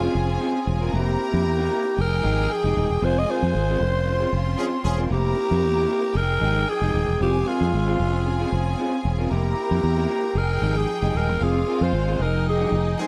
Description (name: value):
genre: disco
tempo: 114 BPM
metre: 4/4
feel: straight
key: F minor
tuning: A4 = 441 Hz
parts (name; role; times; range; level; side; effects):
- growling alto saxophone; melody; 0.0-13.0 s; F4 to Eb5; -27 LUFS; equal; slapback echo
- clear studio violin section; second line; 0.0-13.1 s; Eb4 to C6; -34 LUFS; equal; none
- electric guitar through a small old amp; accompaniment; 0.0-13.1 s; Ab3 to Bb4; -32 LUFS; equal; none
- rich studio string section; sustained chords; 0.0-13.1 s; F3 to G5; -34 LUFS; equal; none
- fingered electric bass; bass; 0.0-12.9 s; Eb1 to F2; -25 LUFS; equal; none
- clear horn section; stabs; 4.6-5.0, 13.0-13.1 s; Eb3 to Ab4; -31 LUFS; equal; none
room: small room ambience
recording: dry, close 1970s-style studio recording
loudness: -22 LUFS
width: mono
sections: 0.0-13.1 A section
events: band accent 3.0-5.1, 11.4-13.1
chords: 0.0 Dbmaj7/F; 0.9 C7/F; 2.0 Fm9; 3.0 Ab6/F; 3.8 Dbmaj7/F; 5.1 C7/F; 6.2 Fm9; 7.2 Ab6/F; 8.0 Dbmaj7/F; 9.3 C7/F; 10.4 Fm9; 11.4 Ab6/F; 12.2 Fm9